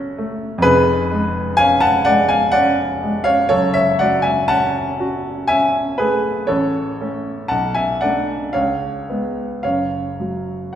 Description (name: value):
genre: classical, romantic nocturne for solo piano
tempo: 53-66 BPM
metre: 3/4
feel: rubato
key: F# minor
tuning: A4 = 442 Hz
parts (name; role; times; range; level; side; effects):
- clear baby grand piano; solo; 0.0-10.8 s; E#1 to A5; -16 LUFS; equal; none
room: wet recital hall reverb, RT60 1.6 s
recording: heard from further back in the room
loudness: -16 LUFS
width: side -10 dB against mid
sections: 0.0-10.8 A section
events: none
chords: 0.0 F#m; 0.6 C#7/E#; 3.5 F#m; 6.5 A; 7.5 Bm7; 8.5 C#7; 9.6 F#5